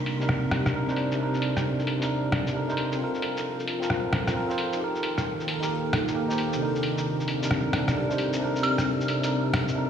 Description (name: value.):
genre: future garage.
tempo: 133 BPM.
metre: 4/4.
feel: swing 66% on 16ths.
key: C dorian.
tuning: A4 = 441 Hz.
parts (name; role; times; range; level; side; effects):
tine electric piano; accompaniment; 0.0-9.9 s; C3 to C5; -27 LUFS; right 1 dB; fast stereo tremolo, tape echo.
dark analog pad; sustained chords; 0.0-9.9 s; Eb3 to G5; -31 LUFS; left 1 dB; chorus.
backwards swelling texture; texture; 1.5-9.9 s; A4; -37 LUFS; equal; built-in reverb.
lo-fi sampler-style drum kit; drums; 0.1-9.7 s; hi-hat, rim click, shaker; -30 LUFS; left 1 dB; low-pass filter on perc, studio reverb, low-pass filter on hats, low-pass filter on snare.
soft synth bell; melody; 8.6-8.9 s; F6; -31 LUFS; right 2 dB; chorus, phaser, vintage 12-bit sampler grit, tape echo.
room: moderate huge ambient reverb, RT60 7.8 s.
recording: played on a big sound system in a bare room, stone room reverb.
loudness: -24 LUFS.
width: side -8 dB against mid.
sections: 0.0-9.9 A section.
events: none.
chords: 0.0 Cm7; 3.0 Fsus4; 4.8 Eb; 6.6 Cm7.